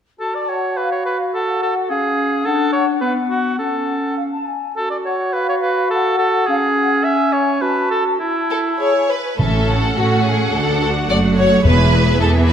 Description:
quick classical-period movement for symphony orchestra; 106 BPM; 2/4; rubato; F# minor, A major from 7.0 s; A4 = 442 Hz
mellow clarinet; second line; 0.2-9.4 s; B3 to C#5; -21 LUFS; equal
mellow large flute ensemble; second line; 0.2-9.1 s; E#5 to A5; -23 LUFS; left 4 dB
warm oboe; second line; 0.2-9.1 s; E4 to E5; -20 LUFS; right 2 dB
rich studio violin section; second line; 8.5-12.5 s; F#4 to D5; -18 LUFS; left 2 dB
rich studio violin section; melody; 9.4-12.5 s; E5 to F#5; -25 LUFS; equal
rich studio viola section; accompaniment; 9.4-12.5 s; A3 to A4; -21 LUFS; right 1 dB
bright studio cello section; bass; 9.4-12.5 s; D2 to A3; -20 LUFS; right 2 dB
clear studio double bass section; bass; 9.4-12.5 s; E1 to A2; -19 LUFS; right 1 dB
timpani; percussion; 9.4-12.4 s; E2 to A2; -18 LUFS; left 1 dB
wet scoring stage reverb, RT60 1.9 s; -15 LUFS; side -8 dB against mid
0.2-9.4 A section; 9.4-12.5 B section
0.2 F#m; 0.8 F#sus4; 1.3 N.C.; 1.9 C#; 2.5 D; 3.0 B5; 3.6 F#m/C#; 4.2 C#5; 4.8 F#m; 5.3 F#sus4; 5.9 N.C.; 6.5 C#5; 7.0 C#m; 7.6 F#m; 8.2 A5/E; 8.8 E; 9.4 A; 10.5 D; 11.6 E

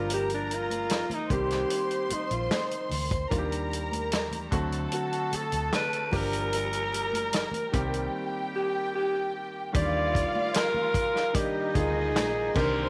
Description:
lush 1970s-style soul; 75 BPM; 4/4; straight; Eb major; A4 = 440 Hz
growling alto saxophone; melody; 0.0-12.9 s; D4 to D5; -32 LUFS; equal; slapback echo
dark studio string section; second line; 0.0-12.9 s; Eb4 to C6; -36 LUFS; equal
warm grand piano; accompaniment; 0.0-12.9 s; D3 to G4; -37 LUFS; equal
vintage muted fingered electric bass; bass; 0.0-12.9 s; G1 to Eb2; -36 LUFS; equal
warm soul drum kit; drums; 0.1-12.7 s; crash cymbal, hi-hat, kick drum, snare drum; -34 LUFS; equal
congas; percussion; 0.1-12.7 s; -45 LUFS; equal
light reverb, studio reverb; -28 LUFS; mono
0.0-9.7 A section; 9.7-12.9 B section
alto saxophone solo 0.0-9.7
0.0 Gm7; 1.3 Cm7; 3.3 Ebmaj7; 4.5 D7; 6.1 Gm7; 7.7 Cm7; 9.7 Ebmaj7

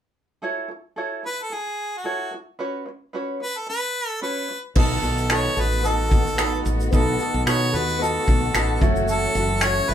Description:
acoustic pop; 111 BPM; 4/4; swing 55% on 16ths; B mixolydian; A4 = 440 Hz
tenor ukulele; accompaniment; 0.4-9.9 s; C#4 to C#5; -27 LUFS; right 3 dB
bright harmonica; melody; 1.3-9.9 s; F#4 to C#5; -25 LUFS; equal
warm upright piano; accompaniment; 4.8-9.9 s; A3 to E5; -31 LUFS; left 5 dB
warm symphonic string section; sustained chords; 4.8-9.9 s; D#3 to F#4; -31 LUFS; left 3 dB
woody fretless electric bass; bass; 4.8-9.9 s; F#1 to B2; -25 LUFS; equal
natural country drum kit; drums; 4.8-9.9 s; crash cymbal, finger snaps, kick drum, shaker; -22 LUFS; equal
wet studio ambience, RT60 0.5 s; band playing live in one room; -20 LUFS; side -10 dB against mid
0.4-4.8 A section; 4.8-9.9 B section
0.4 F#m7; 2.6 Bsus2; 4.8 B7; 8.8 F#m7

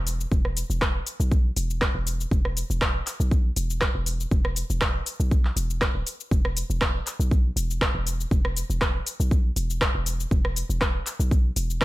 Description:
afro house; 120 BPM; 4/4; swing 54% on 16ths; A4 = 441 Hz
warm 808-style bass; bass; 0.0-11.8 s; D1 to B1; -26 LUFS; equal; sidechain pumping
afro-pop drum kit; drums; 0.1-11.8 s; cabasa, handclaps, hi-hat, rim click; -28 LUFS; equal; studio reverb
electronic kick drum; drums; 0.3-11.8 s; -23 LUFS; equal; studio reverb
digital ambience; -22 LUFS; side -18 dB against mid
0.0-11.8 A section

